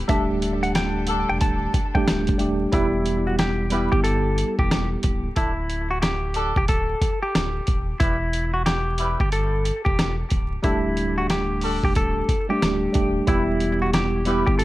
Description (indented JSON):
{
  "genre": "hip hop, boom-bap hip-hop",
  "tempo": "91 BPM",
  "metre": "4/4",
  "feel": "swing 63% on 16ths",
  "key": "E minor",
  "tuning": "A4 = 440 Hz",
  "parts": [
    { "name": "warm studio string section", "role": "sustained chords", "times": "0.0-2.7 s", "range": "D3 to A4", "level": "-36 LUFS", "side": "left 2 dB", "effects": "high-pass filter, low-pass filter" },
    { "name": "sub bass with octave", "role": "bass", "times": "0.0-14.6 s", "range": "C#1 to G1", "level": "-27 LUFS", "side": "equal", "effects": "none" },
    { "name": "semi-hollow electric guitar", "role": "melody", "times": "0.1-14.6 s", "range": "E4 to A5", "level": "-26 LUFS", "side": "equal", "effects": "high-pass filter, low-pass filter, tape echo" },
    { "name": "tine electric piano", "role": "accompaniment", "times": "0.1-5.3, 10.6-14.6 s", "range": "G3 to G4", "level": "-24 LUFS", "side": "right 1 dB", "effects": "medium stereo tremolo, high-pass filter, low-pass filter, tape echo" },
    { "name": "muted trumpet section", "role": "stabs", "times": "0.1-14.5 s", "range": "G3 to B4", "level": "-30 LUFS", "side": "left 1 dB", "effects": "high-pass filter, low-pass filter, tape echo" },
    { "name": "dusty soul sampler-style drum kit", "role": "drums", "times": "0.1-14.6 s", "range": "hi-hat, kick drum, rim click, snare drum", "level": "-23 LUFS", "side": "equal", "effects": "none" }
  ],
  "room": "little or no reverb",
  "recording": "echo-heavy mix, vinyl crackle",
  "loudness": "-20 LUFS",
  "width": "side -16 dB against mid",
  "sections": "0.0-2.7 A section; 2.7-14.6 B section",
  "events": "none",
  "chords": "0.1 Dsus4; 2.7 Em; 5.4 Dsus4; 8.0 Em; 10.6 Dsus4; 13.3 Em",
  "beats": "| 0.09 0.75 1.41 2.07 | 2.73 3.39 4.05 4.71 | 5.37 6.03 6.69 7.34 | 8.01 8.66 9.32 9.98 | 10.64 11.30 11.96 12.62 | 13.28 13.94 14.60"
}